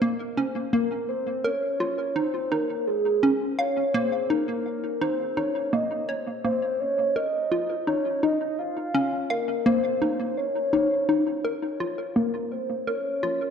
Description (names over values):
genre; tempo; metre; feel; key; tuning
ambient, sequencer-driven space music; 84 BPM; 4/4; straight; Bb minor; A4 = 440 Hz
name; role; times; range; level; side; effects
hollow square pluck; riff; 0.0-13.5 s; Bb3 to F5; -26 LUFS; left 1 dB; chorus, tape echo
soft octave-layered synth lead; melody; 0.7-13.5 s; Ab4 to F5; -26 LUFS; equal; chorus, phaser, tape echo
room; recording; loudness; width
wet concert hall reverb, RT60 2.0 s; dark, warm production; -23 LUFS; side -7 dB against mid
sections
0.0-13.5 A section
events
none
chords
0.0 Bbmadd9